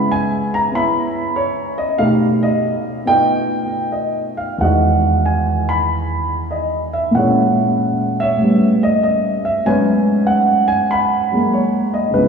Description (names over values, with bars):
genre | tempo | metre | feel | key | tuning
solo jazz | 95 BPM | 4/4 | swing 68% on 8ths, rubato | G# minor | A4 = 442 Hz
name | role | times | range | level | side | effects
dark concert grand piano | solo | 0.0-12.3 s | E2 to B5 | -14 LUFS | equal | none
room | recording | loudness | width
wet church reverb, RT60 4.0 s | recorded in a church or concert hall, small room ambience | -14 LUFS | side -6 dB against mid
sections
0.0-12.3 A section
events
none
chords
0.0 C#m7; 2.0 Baug7; 4.6 Emaj9; 7.2 A#m7b5; 8.4 A9; 9.7 G#m11